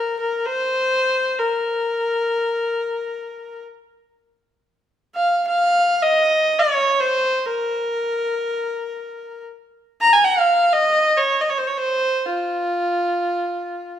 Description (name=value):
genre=Persian modal ensemble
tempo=free time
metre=none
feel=none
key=F dastgah shur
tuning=A4 = 440 Hz
part: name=clear kamancheh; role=solo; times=0.0-14.0 s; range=F4 to Bb5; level=-18 LUFS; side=equal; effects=none
room=moderate recital hall reverb, RT60 1.4 s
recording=minimal, uncompressed stereo recording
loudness=-17 LUFS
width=side -10 dB against mid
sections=0.0-14.0 A section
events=none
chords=none